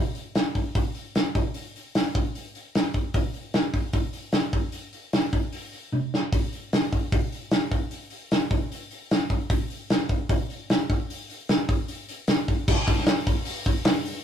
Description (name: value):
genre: rock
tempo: 151 BPM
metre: 4/4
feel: straight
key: none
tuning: none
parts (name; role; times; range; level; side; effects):
- loose indie drum kit; drums; 0.1-14.1 s; crash cymbal, hi-hat, kick drum, snare drum, toms; -24 LUFS; equal; none
- group handclap; percussion; 12.9-14.0 s; none; -37 LUFS; left 1 dB; none
room: light reverb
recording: rough rehearsal-room recording, warm saturation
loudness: -23 LUFS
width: side -9 dB against mid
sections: 0.0-12.7 A section; 12.7-14.2 B section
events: drum fill 5.9-6.3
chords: none